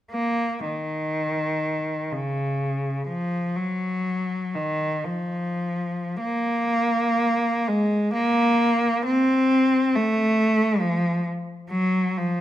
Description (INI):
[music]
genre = classical, free, expressive piece for unaccompanied cello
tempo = 47-70 BPM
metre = 3/4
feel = rubato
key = Bb minor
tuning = A4 = 440 Hz
[part]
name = rich cello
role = solo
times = 0.1-12.4 s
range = Db3 to C4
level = -21 LUFS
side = equal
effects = none
[sound]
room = moderate recital hall reverb, RT60 1.4 s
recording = close, detailed microphones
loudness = -21 LUFS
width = side -12 dB against mid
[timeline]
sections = 0.1-12.4 A section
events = none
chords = none